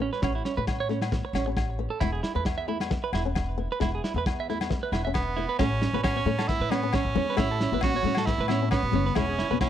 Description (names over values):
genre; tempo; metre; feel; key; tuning
highlife guitar band; 134 BPM; 4/4; swing 54% on 16ths; A major; A4 = 440 Hz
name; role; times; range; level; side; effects
flamenco guitar; accompaniment; 0.0-9.7 s; G#3 to C#4; -34 LUFS; left 10 dB; none
semi-hollow electric guitar; arpeggios; 0.0-9.7 s; C#4 to E5; -31 LUFS; right 7 dB; spring reverb, tape echo
upright bass; bass; 0.0-9.7 s; E1 to A2; -31 LUFS; equal; none
crunchy breakbeat drum kit; drums; 0.1-9.7 s; kick drum, snare drum; -30 LUFS; equal; none
agogo bells; percussion; 0.2-9.7 s; none; -36 LUFS; left 12 dB; none
edgy tenor saxophone; melody; 5.1-9.7 s; B3 to F#4; -29 LUFS; right 4 dB; none
congas; percussion; 5.9-9.6 s; none; -33 LUFS; left 22 dB; none
room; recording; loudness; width
little or no reverb; dry, close 1970s-style studio recording; -24 LUFS; side -10 dB against mid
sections
0.0-5.6 A section; 5.6-9.7 B section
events
none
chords
0.0 Aadd9; 2.0 E; 5.6 Aadd9; 9.2 E